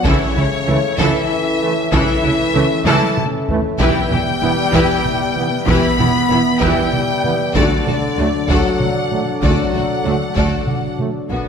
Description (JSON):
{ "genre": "cinematic, hybrid orchestral and electronic film score", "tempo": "64 BPM (dotted quarters)", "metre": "6/8", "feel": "straight", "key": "unclear", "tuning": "A4 = 437 Hz", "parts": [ { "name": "rich symphonic violin section", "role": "melody", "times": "0.0-11.5 s", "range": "C#5 to B5", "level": "-22 LUFS", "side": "left 4 dB", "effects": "none" }, { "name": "rich symphonic violin section", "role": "second line", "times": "0.0-11.5 s", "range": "B3 to D5", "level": "-24 LUFS", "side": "left 3 dB", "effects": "none" }, { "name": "rich symphonic viola section", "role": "accompaniment", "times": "0.0-11.5 s", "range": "E3 to F#4", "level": "-23 LUFS", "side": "right 1 dB", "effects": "none" }, { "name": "chorused pulse-width pad", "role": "sustained chords", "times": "0.0-11.5 s", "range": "E3 to E5", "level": "-25 LUFS", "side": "equal", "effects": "none" }, { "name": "warm French horn section", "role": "sustained chords", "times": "0.0-11.0 s", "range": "C#3 to B3", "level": "-21 LUFS", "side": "left 2 dB", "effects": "none" }, { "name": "rich symphonic double bass section", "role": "bass", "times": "0.0-11.4 s", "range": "E1 to D2", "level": "-23 LUFS", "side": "right 3 dB", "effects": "none" }, { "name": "warm symphonic cello section", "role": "bass", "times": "0.1-11.4 s", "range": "D2 to C#3", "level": "-23 LUFS", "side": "right 3 dB", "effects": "none" }, { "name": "taiko ensemble", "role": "drums", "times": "0.1-11.5 s", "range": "none", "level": "-22 LUFS", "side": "equal", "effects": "none" }, { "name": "warm trombone section", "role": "sustained chords", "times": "0.7-11.1 s", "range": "E3 to B3", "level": "-25 LUFS", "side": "right 4 dB", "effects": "none" }, { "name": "impact", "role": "sound effects", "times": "11.3-11.5 s", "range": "none", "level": "-28 LUFS", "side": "left 1 dB", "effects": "none" } ], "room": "wet scoring stage reverb, RT60 1.6 s", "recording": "none", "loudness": "-14 LUFS", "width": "side -7 dB against mid", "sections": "0.0-11.3 A section", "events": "drum fill 2.9-3.8; impact 11.3", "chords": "0.1 A/C#; 3.8 Em; 7.6 D" }